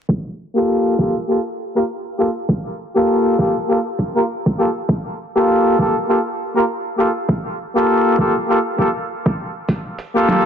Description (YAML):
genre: glitch hop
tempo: 100 BPM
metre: 4/4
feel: swing 58% on 16ths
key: G minor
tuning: A4 = 440 Hz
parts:
  - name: electronic kick drum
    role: drums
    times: 0.1-9.8 s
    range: none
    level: -20 LUFS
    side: right 1 dB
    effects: high-pass filter on kick, studio reverb
  - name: brilliant horn section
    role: stabs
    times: 0.6-10.5 s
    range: Bb3 to Bb4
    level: -16 LUFS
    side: equal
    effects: vintage 12-bit sampler grit, sidechain pumping, low-pass filter, dub echo
  - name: boom bap sampler-style drum kit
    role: drums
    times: 9.7-10.4 s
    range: hi-hat, snare drum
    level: -20 LUFS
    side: right 2 dB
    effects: studio reverb
  - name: cabasa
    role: percussion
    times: 9.7-10.4 s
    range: none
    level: -52 LUFS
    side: right 5 dB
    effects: none
room: light reverb, small room ambience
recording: dense, heavily limited modern master, vinyl crackle, low-pass filter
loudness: -16 LUFS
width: side -8 dB against mid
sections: 0.1-10.5 A section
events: filter sweep on horn section 0.1-10.5; filter sweep 0.1-10.5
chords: 0.1 Gm9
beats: | 0.09 0.69 1.29 1.89 | 2.49 3.09 3.69 4.29 | 4.89 5.49 6.09 6.69 | 7.29 7.89 8.49 9.09 | 9.69 10.29